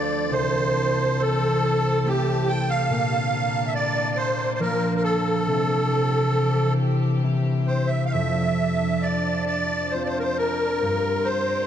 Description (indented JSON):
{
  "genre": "celtic folk, Celtic slow air",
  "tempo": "69 BPM",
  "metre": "3/4",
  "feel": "uneven beats, rubato",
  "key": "unclear",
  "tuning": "A4 = 439 Hz",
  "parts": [
    { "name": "musette accordion", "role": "melody", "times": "0.0-11.7 s", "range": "G4 to G5", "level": "-23 LUFS", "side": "right 1 dB", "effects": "none" },
    { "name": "concert harp", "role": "accompaniment", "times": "0.0-11.7 s", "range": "C2 to F4", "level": "-24 LUFS", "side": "left 1 dB", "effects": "none" },
    { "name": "rich studio string section", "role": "sustained chords", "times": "0.0-11.7 s", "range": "D3 to A5", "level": "-30 LUFS", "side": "equal", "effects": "none" }
  ],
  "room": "wet cathedral reverb, RT60 5.0 s",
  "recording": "dark, warm production",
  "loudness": "-20 LUFS",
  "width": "side -9 dB against mid",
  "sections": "0.0-11.7 A section",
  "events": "none",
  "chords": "0.3 C6; 2.9 Bbmaj7; 5.5 C; 8.1 F6; 10.8 Gm7",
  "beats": "| 0.32 1.19 2.06 | 2.90 3.73 4.59 | 5.47 6.34 7.22 | 8.12 9.03 9.93 | 10.82"
}